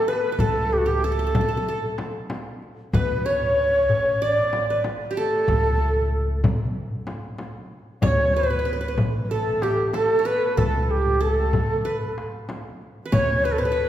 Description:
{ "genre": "Arabic maqam ensemble", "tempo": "94 BPM", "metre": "4/4", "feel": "straight", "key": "unclear", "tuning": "A4 = 441 Hz", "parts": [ { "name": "breathy bright ney", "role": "melody", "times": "0.0-13.9 s", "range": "F#4 to D5", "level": "-23 LUFS", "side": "right 1 dB", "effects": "none" }, { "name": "breathy flute-like synth lead", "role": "second line", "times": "0.0-13.9 s", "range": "G4 to D5", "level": "-28 LUFS", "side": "left 3 dB", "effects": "chorus" }, { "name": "qanun", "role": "second line", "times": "0.0-13.9 s", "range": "G4 to D5", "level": "-31 LUFS", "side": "right 3 dB", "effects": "none" }, { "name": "darbuka", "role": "percussion", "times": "0.1-13.8 s", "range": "none", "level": "-30 LUFS", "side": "left 1 dB", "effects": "none" }, { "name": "upright bass", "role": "bass", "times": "0.4-13.9 s", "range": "A1 to D2", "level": "-27 LUFS", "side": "equal", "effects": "none" }, { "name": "frame drum", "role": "percussion", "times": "0.4-13.3 s", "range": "none", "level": "-29 LUFS", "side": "left 1 dB", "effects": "none" } ], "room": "wet recital hall reverb, RT60 1.9 s", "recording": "heard from further back in the room", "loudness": "-20 LUFS", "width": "side -12 dB against mid", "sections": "0.0-13.9 A section", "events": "none", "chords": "none" }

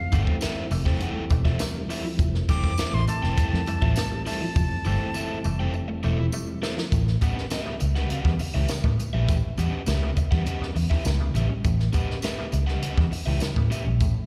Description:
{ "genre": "funk", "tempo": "102 BPM", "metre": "4/4", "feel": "straight", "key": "unclear", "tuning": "A4 = 442 Hz", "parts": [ { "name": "breathy bright jazz flute", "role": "melody", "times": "0.0-6.0 s", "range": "F5 to D6", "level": "-35 LUFS", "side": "equal", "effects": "slapback echo" }, { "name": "mellow tonewheel organ", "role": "sustained chords", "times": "0.0-6.9 s", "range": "E3 to C4", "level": "-38 LUFS", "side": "equal", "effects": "slow rotary speaker" }, { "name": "muted clav", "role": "stabs", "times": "0.0-14.2 s", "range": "A2 to B3", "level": "-40 LUFS", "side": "equal", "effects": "overdrive, slapback echo" }, { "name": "overdriven semi-hollow guitar", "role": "accompaniment", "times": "0.1-13.9 s", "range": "C#4 to G5", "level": "-35 LUFS", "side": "equal", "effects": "slapback echo" }, { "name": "mellow electric guitar", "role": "riff", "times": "0.1-14.1 s", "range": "E3 to C#4", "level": "-40 LUFS", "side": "equal", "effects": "none" }, { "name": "vintage muted fingered electric bass", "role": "bass", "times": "0.1-14.1 s", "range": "E1 to A2", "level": "-27 LUFS", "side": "equal", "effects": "none" }, { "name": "compact cocktail drum kit", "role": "drums", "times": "0.1-14.1 s", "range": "hi-hat, kick drum, snare drum", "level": "-28 LUFS", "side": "equal", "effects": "none" }, { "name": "tambourine", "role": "percussion", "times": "0.1-14.1 s", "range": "none", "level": "-45 LUFS", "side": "equal", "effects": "none" } ], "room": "little or no reverb", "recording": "live gig heard through the venue's PA, recital hall reverb", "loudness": "-25 LUFS", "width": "mono", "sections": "0.0-6.9 A section; 6.9-14.3 B section", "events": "drum fill 4.6-6.9", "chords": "0.0 Fmaj7; 6.9 A9" }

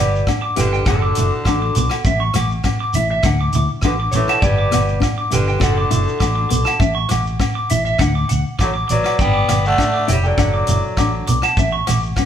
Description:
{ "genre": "highlife guitar band", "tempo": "101 BPM", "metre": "4/4", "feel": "straight", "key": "D major", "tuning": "A4 = 440 Hz", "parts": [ { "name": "electric guitar at the edge of break-up", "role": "melody", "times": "0.0-11.4 s", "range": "F#4 to G5", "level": "-22 LUFS", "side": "equal", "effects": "none" }, { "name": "growling tenor saxophone", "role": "second line", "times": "0.0-11.4 s", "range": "D3 to B3", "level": "-26 LUFS", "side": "left 2 dB", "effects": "none" }, { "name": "electric guitar through a small old amp", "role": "arpeggios", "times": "0.0-12.0 s", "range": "E5 to D6", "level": "-22 LUFS", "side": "right 1 dB", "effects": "none" }, { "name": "fingered electric bass", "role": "bass", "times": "0.0-12.1 s", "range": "F1 to D2", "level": "-21 LUFS", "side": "equal", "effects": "none" }, { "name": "shekere", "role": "percussion", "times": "0.2-12.3 s", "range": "none", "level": "-24 LUFS", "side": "right 4 dB", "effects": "none" }, { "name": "nylon-string guitar", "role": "accompaniment", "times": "0.3-12.3 s", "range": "C#3 to F#4", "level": "-26 LUFS", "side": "left 6 dB", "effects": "none" }, { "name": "vintage drum kit", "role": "drums", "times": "0.3-12.3 s", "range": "hi-hat, kick drum, rim click", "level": "-21 LUFS", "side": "equal", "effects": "none" }, { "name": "agogo bells", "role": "percussion", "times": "0.3-12.3 s", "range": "none", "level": "-28 LUFS", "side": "equal", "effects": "none" } ], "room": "moderate large studio reverb, RT60 1.1 s", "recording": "band playing live in one room", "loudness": "-15 LUFS", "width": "side -9 dB against mid", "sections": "0.0-12.3 A section", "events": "none", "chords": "0.0 G; 0.9 D/F#; 2.1 A; 3.2 D5; 4.4 G; 5.6 D/F#; 6.8 A; 8.0 D; 9.2 G; 10.4 D/F#; 11.6 A" }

